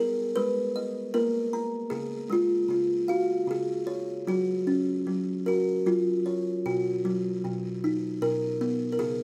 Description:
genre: children's music, lullaby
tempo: 77 BPM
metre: 3/4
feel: straight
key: unclear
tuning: A4 = 440 Hz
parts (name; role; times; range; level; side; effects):
- buzzing kalimba; solo; 0.0-9.2 s; B2 to A#5; -28 LUFS; equal; none
room: moderate recital hall reverb, RT60 1.5 s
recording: close, detailed microphones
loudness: -28 LUFS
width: mono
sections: 0.0-9.2 A section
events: none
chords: 0.0 G#madd9; 1.9 C#; 4.3 F#; 6.7 B

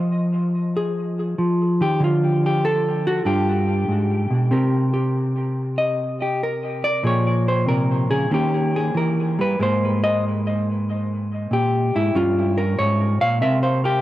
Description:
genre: solo jazz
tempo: 95 BPM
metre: 4/4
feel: swing 68% on 8ths, rubato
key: unclear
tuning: A4 = 440 Hz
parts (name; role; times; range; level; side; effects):
- hollow-body jazz guitar; solo; 0.0-14.0 s; G2 to F5; -18 LUFS; equal; dub echo
room: moderate spring reverb, RT60 1.5 s, digital ambience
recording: echo-heavy mix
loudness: -18 LUFS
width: side -14 dB against mid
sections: 0.0-14.0 A section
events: hollow-body jazz guitar solo 0.0-14.0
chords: 0.0 Fm7; 2.0 Dm; 3.3 G7b9; 4.5 C5; 7.0 Bbm9; 8.3 Eb7b9; 9.6 Absus2; 12.2 Gdim; 13.4 C7

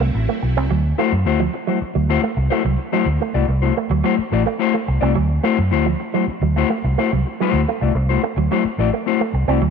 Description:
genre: funk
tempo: 108 BPM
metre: 4/4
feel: straight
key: D mixolydian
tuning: A4 = 444 Hz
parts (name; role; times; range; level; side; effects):
- string machine, violins; sustained chords; 0.0-0.7 s; F#3 to E4; -30 LUFS; right 1 dB; ensemble chorus
- electric guitar with an envelope filter; riff; 0.0-9.7 s; F3 to C4; -24 LUFS; right 12 dB; wide subtle chorus
- vintage muted fingered electric bass; bass; 0.0-9.7 s; A1 to F#2; -18 LUFS; right 1 dB; none
- mellow electric guitar; accompaniment; 1.0-9.6 s; A3 to D5; -20 LUFS; left 11 dB; none
room: moderate echo chamber reverb, RT60 2.7 s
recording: 1960s-style stereo with parts hard left and right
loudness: -16 LUFS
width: side -6 dB against mid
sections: 0.7-9.7 A section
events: break 0.0-0.7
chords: 0.0 D9 (rootless); 0.7 D9

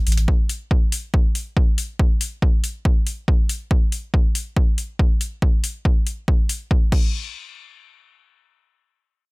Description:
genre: driving peak-time techno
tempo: 140 BPM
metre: 4/4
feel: straight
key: none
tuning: none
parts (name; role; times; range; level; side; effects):
- techno drum kit; drums; 0.1-7.0 s; crash cymbal, hi-hat; -28 LUFS; left 3 dB; none
- electronic kick drum; drums; 0.3-7.0 s; none; -17 LUFS; equal; none
room: little or no reverb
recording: none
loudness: -18 LUFS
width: side -29 dB against mid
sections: 0.0-7.1 A section; 7.1-9.3 B section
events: none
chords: none

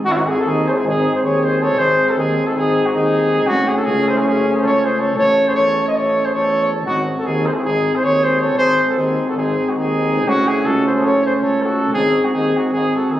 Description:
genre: balkan folk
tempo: 318 BPM (eighths)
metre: 9/8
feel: straight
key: G# phrygian dominant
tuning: A4 = 439 Hz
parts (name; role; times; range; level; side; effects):
- mellow cornet; melody; 0.1-13.2 s; E4 to D#5; -17 LUFS; equal; none
- mellow flugelhorn; second line; 0.1-13.2 s; C#4 to B#4; -24 LUFS; right 1 dB; none
- dark euphonium; accompaniment; 0.1-13.2 s; G#3 to A3; -24 LUFS; left 1 dB; none
- warm trombone; accompaniment; 0.1-13.2 s; B#3 to C#4; -22 LUFS; equal; none
- warm tuba; bass; 0.1-13.2 s; F#1 to E2; -25 LUFS; equal; none
room: wet scoring stage reverb, RT60 2.0 s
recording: recorded on a phone in the room, club reverb, compression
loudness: -14 LUFS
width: side -13 dB against mid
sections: 0.1-13.2 A section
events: none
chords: 0.1 G#; 3.5 F#m; 5.2 A; 6.9 G#; 10.3 F#m; 11.9 G#

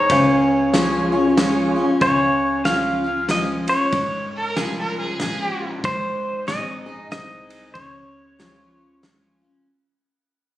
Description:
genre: honky-tonk and classic country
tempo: 94 BPM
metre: 3/4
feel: swing 60% on 8ths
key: Db major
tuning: A4 = 439 Hz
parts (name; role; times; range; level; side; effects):
- pedal steel guitar; melody; 0.0-9.4 s; C5 to F5; -22 LUFS; equal; none
- picked steel-string acoustic guitar; accompaniment; 0.0-9.7 s; Ab2 to Ab4; -22 LUFS; left 1 dB; none
- pedal steel guitar; sustained chords; 0.0-5.8 s; Db5 to Ab5; -28 LUFS; right 1 dB; none
- upright bass; bass; 0.1-9.4 s; Ab1 to Db2; -31 LUFS; equal; none
- natural country drum kit; drums; 0.1-9.2 s; kick drum, ride cymbal, snare drum; -27 LUFS; right 1 dB; none
- mellow tonewheel organ; accompaniment; 0.7-1.9 s; F4 to Db5; -25 LUFS; right 3 dB; slow rotary speaker
- clear fiddle; second line; 4.4-5.7 s; Ab4 to Bb4; -26 LUFS; right 2 dB; none
room: wet recital hall reverb, RT60 1.4 s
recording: recorded on a phone in the room, studio reverb, compression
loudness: -18 LUFS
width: side -14 dB against mid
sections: 0.0-2.0 A section; 2.0-9.7 B section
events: fade-out 2.0-9.7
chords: 0.1 Db; 5.8 Ab; 7.8 Db

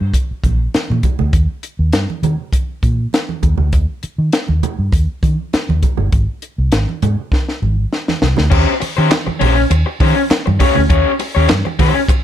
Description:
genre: funk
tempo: 100 BPM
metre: 4/4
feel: straight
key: Eb mixolydian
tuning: A4 = 440 Hz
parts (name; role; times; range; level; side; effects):
- vintage muted fingered electric bass; bass; 0.0-11.9 s; G1 to Eb3; -15 LUFS; equal; none
- compact cocktail drum kit; drums; 0.1-12.2 s; crash cymbal, handclaps, hi-hat, kick drum, ride cymbal, snare drum; -16 LUFS; equal; none
- congas; percussion; 0.2-12.2 s; none; -24 LUFS; right 8 dB; none
- crunchy overdriven guitar; accompaniment; 8.5-12.1 s; Db4 to Db5; -16 LUFS; left 4 dB; none
room: light reverb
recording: dark, warm production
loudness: -13 LUFS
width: side -11 dB against mid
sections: 0.0-8.5 A section; 8.5-12.2 B section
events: drum fill 7.3-8.5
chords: 0.0 Eb; 6.1 Ab; 8.5 Eb6

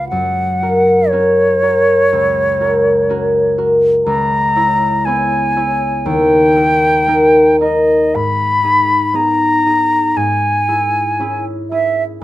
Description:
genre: classical, romantic duo for flute and harp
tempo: 59 BPM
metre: 4/4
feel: rubato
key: unclear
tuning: A4 = 439 Hz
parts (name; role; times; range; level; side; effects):
- concert flute; melody; 0.0-12.2 s; Db5 to B5; -14 LUFS; equal; none
- concert harp; accompaniment; 0.0-12.2 s; Db2 to C#5; -14 LUFS; equal; none
room: moderate studio ambience, RT60 0.5 s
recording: none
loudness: -11 LUFS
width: side -15 dB against mid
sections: 0.0-12.2 A section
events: none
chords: 0.1 Gb; 4.1 C#m7; 6.1 D#; 8.2 G#m; 10.2 C#m/G#

